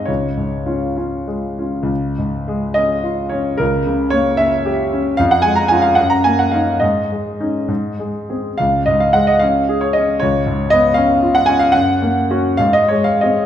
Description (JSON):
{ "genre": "classical, romantic character piece for solo piano", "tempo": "60-80 BPM (dotted quarters)", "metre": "6/8", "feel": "rubato", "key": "Db major", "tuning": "A4 = 440 Hz", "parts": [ { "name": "clear concert grand piano", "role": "solo", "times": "0.0-13.5 s", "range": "Db2 to Bb5", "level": "-14 LUFS", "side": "equal", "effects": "none" } ], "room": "wet recital hall reverb, RT60 1.4 s", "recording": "minimal, uncompressed stereo recording", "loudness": "-14 LUFS", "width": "side -10 dB against mid", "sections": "0.0-1.9 A section; 1.9-13.5 A section", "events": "none", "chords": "0.1 Db; 3.6 Dbdim7; 5.2 Db/F; 6.0 Gb6; 6.8 Absus4; 7.7 Ab; 8.6 Db5; 10.2 Db7; 11.7 Gb; 12.6 Ab" }